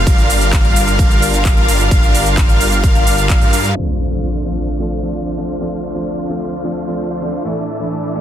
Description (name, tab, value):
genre	EDM, festival progressive house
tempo	130 BPM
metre	4/4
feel	straight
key	D minor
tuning	A4 = 440 Hz
part	rich chamber string section	sustained chords	0.0-8.2 s	D2 to C5	-26 LUFS	left 3 dB	sidechain pumping, low-pass filter
part	wide unison lead	arpeggios	0.0-3.7 s	F5	-20 LUFS	equal	wide subtle chorus, sidechain pumping, dub echo
part	big supersaw lead	riff	0.0-8.2 s	G3 to F5	-21 LUFS	equal	sidechain pumping, low-pass filter, dub echo
part	wide detuned saw bass	bass	0.0-3.7 s	G1 to G2	-18 LUFS	equal	chorus, sidechain pumping
part	big-room dance drum kit	drums	0.1-3.9 s	crash cymbal, handclaps, hi-hat, ride cymbal, shaker	-21 LUFS	right 3 dB	low-pass filter on hats, small room ambience, low-pass filter on perc, low-pass filter on cymbals, low-pass filter on snare
part	electronic kick drum	drums	0.1-3.4 s	none	-13 LUFS	equal	small room ambience
part	clear concert grand piano	accompaniment	3.8-8.2 s	E3 to A4	-22 LUFS	equal	vintage 12-bit sampler grit, sidechain pumping, dub echo
part	impact	sound effects	3.8-5.6 s	none	-22 LUFS	equal	none
room	digital ambience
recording	dense, heavily limited modern master, low-pass filter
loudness	-13 LUFS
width	side -11 dB against mid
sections	0.0-3.8 A section; 3.8-8.2 B section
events	drop 0.0-3.8; band accent 3.3; impact 3.8-5.6; filter sweep on supersaw synth 3.8-8.2; filter sweep on string section 3.8-8.2; filter sweep 3.8-8.2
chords	0.1 Gm7; 3.8 Dm7; 7.5 Asus4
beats	| 0.07 0.53 0.99 1.45 | 1.91 2.38 2.84 3.30 | 3.76 4.22 4.68 5.14 | 5.61 6.07 6.53 6.99 | 7.45 7.91